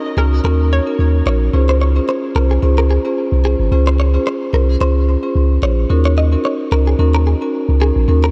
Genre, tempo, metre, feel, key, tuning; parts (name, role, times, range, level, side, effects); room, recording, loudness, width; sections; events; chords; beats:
afrobeats; 110 BPM; 4/4; swing 55% on 16ths; Db major; A4 = 437 Hz
marimba with medium mallets; accompaniment; 0.0-8.3 s; Db4 to C5; -21 LUFS; equal
hollow square pluck; melody; 0.2-0.9 s; Bb4 to Db5; -31 LUFS; equal; chorus, tape echo
direct-recorded clean electric guitar; riff; 0.2-8.3 s; Gb4 to Eb5; -25 LUFS; equal; lush chorus, tape echo
punchy sub bass; bass; 0.2-8.3 s; Ab1 to Eb2; -15 LUFS; equal
light reverb, digital ambience; -15 LUFS; mono
0.0-8.3 A section
0.0 Ebm7; 1.5 Dbmaj7; 5.9 Ebm7
0.45 0.99 | 1.54 2.08 2.63 3.17 | 3.72 4.26 4.81 5.35 | 5.90 6.45 6.99 7.54 | 8.08